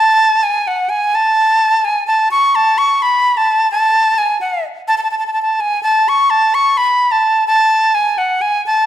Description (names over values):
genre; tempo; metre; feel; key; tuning
calypso; 128 BPM; 4/4; straight; A major; A4 = 440 Hz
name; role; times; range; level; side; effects
breathy bright jazz flute; solo; 0.0-8.9 s; F#5 to C#6; -11 LUFS; equal; none
room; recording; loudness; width
moderate recital hall reverb, RT60 1.5 s; none; -11 LUFS; side -11 dB against mid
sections
0.0-8.9 A section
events
none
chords
none